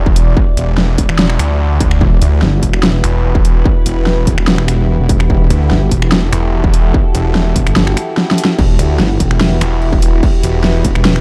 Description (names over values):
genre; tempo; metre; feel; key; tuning
heavy wobble dubstep; 146 BPM; 4/4; half-time; E minor; A4 = 437 Hz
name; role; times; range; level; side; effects
evolving wavetable pad; sustained chords; 0.0-11.2 s; E3 to D5; -24 LUFS; equal; chorus, built-in reverb, sidechain pumping
snarling distorted saw bass; bass; 0.0-10.8 s; E1 to D2; -16 LUFS; equal; distortion, overdrive
electronic kick drum; drums; 0.1-10.9 s; none; -16 LUFS; equal; distortion
dubstep drum kit; drums; 0.2-11.2 s; crash cymbal, finger snaps, hi-hat, snare drum; -18 LUFS; equal; none
wobble bass; bass; 1.0-11.2 s; E1 to G1; -16 LUFS; equal; chorus, overdrive
room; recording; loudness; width
digital ambience; dark, warm production; -12 LUFS; mono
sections
0.0-11.2 A section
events
drum fill 8.2-8.6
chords
0.0 Emadd9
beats
| 0.37 0.78 1.19 1.60 | 2.01 2.42 2.83 3.24 | 3.65 4.07 4.48 4.89 | 5.30 5.71 6.12 6.53 | 6.94 7.35 7.76 8.18 | 8.59 9.00 9.41 9.82 | 10.23 10.64 11.05